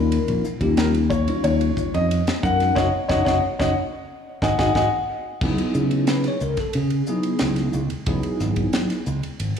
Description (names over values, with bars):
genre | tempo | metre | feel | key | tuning
electric jazz fusion | 90 BPM | 4/4 | straight | C# minor from 5.4 s | A4 = 440 Hz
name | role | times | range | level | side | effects
bell-like tine electric piano | accompaniment | 0.0-9.0 s | F#3 to C#5 | -25 LUFS | left 1 dB | phaser, slapback echo
fingered electric bass | bass | 0.0-9.5 s | F#1 to C#3 | -22 LUFS | equal | none
tight funk drum kit | drums | 0.1-9.6 s | crash cymbal, hi-hat, kick drum, ride cymbal, snare drum | -27 LUFS | equal | slapback echo
clear concert grand piano | melody | 0.8-4.9 s | A#4 to G#5 | -23 LUFS | left 2 dB | slapback echo, tape echo
room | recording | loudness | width
light reverb, small room ambience | live gig heard through the venue's PA, club reverb | -19 LUFS | side -7 dB against mid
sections
0.0-5.4 A section; 5.4-9.6 B section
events
band accent 2.8-5.4; drum fill 4.8-5.4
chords
0.0 D#9; 2.4 F#6; 4.1 G#5; 5.4 C#m11